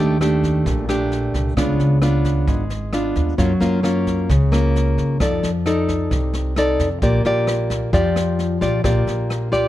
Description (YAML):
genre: bossa nova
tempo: 132 BPM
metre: 4/4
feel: straight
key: Bb major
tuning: A4 = 439 Hz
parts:
  - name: nylon-string guitar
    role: accompaniment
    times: 0.0-9.7 s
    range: Bb2 to D5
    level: -18 LUFS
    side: left 1 dB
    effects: none
  - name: upright bass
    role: bass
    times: 0.0-9.7 s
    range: Ab1 to Gb2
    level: -22 LUFS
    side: right 1 dB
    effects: none
  - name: jazz brush drum kit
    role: drums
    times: 0.2-9.6 s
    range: kick drum, rim click, snare drum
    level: -26 LUFS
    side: equal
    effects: none
room: light reverb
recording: dark, warm production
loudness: -16 LUFS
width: side -14 dB against mid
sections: 0.0-9.7 A section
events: none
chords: 0.0 Ebmaj7#11; 1.6 Db7b9; 3.4 Gbmaj7; 5.2 F6; 7.0 Bb6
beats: 0.21 0.66 1.12 | 1.57 2.03 2.48 2.93 | 3.39 3.84 4.30 4.75 | 5.21 5.66 6.11 6.57 | 7.02 7.48 7.93 8.38 | 8.84 9.29